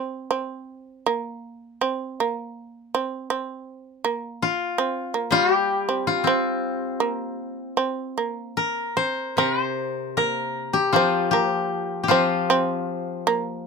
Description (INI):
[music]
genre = japanese traditional, Japanese chamber music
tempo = 79 BPM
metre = 4/4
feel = uneven beats, rubato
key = unclear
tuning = A4 = 442 Hz
[part]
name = shamisen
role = second line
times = 0.0-13.7 s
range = Bb3 to C4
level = -25 LUFS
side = right 6 dB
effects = none
[part]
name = koto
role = melody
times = 4.4-13.7 s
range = C4 to C5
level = -24 LUFS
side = left 4 dB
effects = none
[part]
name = koto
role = accompaniment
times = 5.3-13.7 s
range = C3 to G3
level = -28 LUFS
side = left 6 dB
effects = none
[sound]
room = light reverb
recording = close, detailed microphones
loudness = -22 LUFS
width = side -4 dB against mid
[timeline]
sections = 0.0-9.4 A section; 9.4-13.7 B section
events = none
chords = none